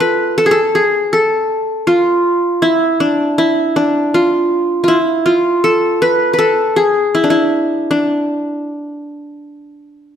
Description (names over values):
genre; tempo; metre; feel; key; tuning
arabic; 80 BPM; 4/4; straight; D maqam nikriz; A4 = 440 Hz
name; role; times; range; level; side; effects
qanun; solo; 0.0-10.2 s; D4 to B4; -12 LUFS; equal; none
room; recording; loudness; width
moderate scoring stage reverb, RT60 1.4 s; none; -12 LUFS; side -8 dB against mid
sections
0.0-10.2 A section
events
none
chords
none